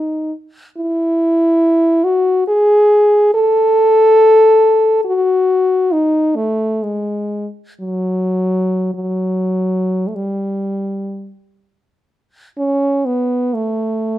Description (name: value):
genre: classical, free, expressive piece for unaccompanied French horn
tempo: 41-74 BPM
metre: 3/4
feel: rubato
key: F# dorian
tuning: A4 = 440 Hz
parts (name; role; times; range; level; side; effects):
- mellow French horn; solo; 0.0-14.2 s; F#3 to A4; -13 LUFS; equal; none
room: moderate large studio reverb, RT60 1.0 s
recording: none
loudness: -12 LUFS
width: side -13 dB against mid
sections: 0.0-12.6 A section; 12.6-14.2 B section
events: none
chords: none